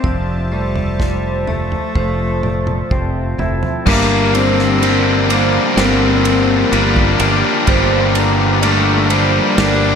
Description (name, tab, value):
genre	post-rock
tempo	63 BPM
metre	4/4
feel	straight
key	G dorian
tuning	A4 = 441 Hz
part	bright cello	melody	0.0-10.0 s	F3 to D4	-20 LUFS	left 2 dB	diffuse ambient delay
part	sweeping resonant pad	sustained chords	0.0-10.0 s	F3 to Bb5	-26 LUFS	right 1 dB	chorus
part	twangy electric guitar	arpeggios	0.0-10.0 s	G2 to E4	-24 LUFS	left 4 dB	diffuse ambient delay
part	vibraphone with hard mallets	arpeggios	0.0-10.0 s	Bb4 to Bb5	-24 LUFS	right 4 dB	diffuse ambient delay
part	fingered electric bass	bass	0.0-10.0 s	F1 to G1	-19 LUFS	right 1 dB	none
part	loose indie drum kit	drums	0.0-9.8 s	crash cymbal, kick drum, ride cymbal, snare drum, toms	-22 LUFS	right 1 dB	none
part	distorted electric guitar	riff	3.9-10.0 s	G3 to G4	-17 LUFS	left 13 dB	overdrive
part	sludgy distorted guitar	riff	3.9-10.0 s	G3 to G4	-19 LUFS	right 13 dB	overdrive
room	moderate plate reverb, RT60 2.6 s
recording	dreamy mix soaked in reverb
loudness	-12 LUFS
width	side -7 dB against mid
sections	0.0-3.9 A section; 3.9-10.0 B section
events	drum fill 2.0-3.9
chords	0.0 Fmaj7; 3.9 Gm7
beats	| 0.04 1.00 1.96 2.91 | 3.87 4.82 5.78 6.73 | 7.68 8.63 9.59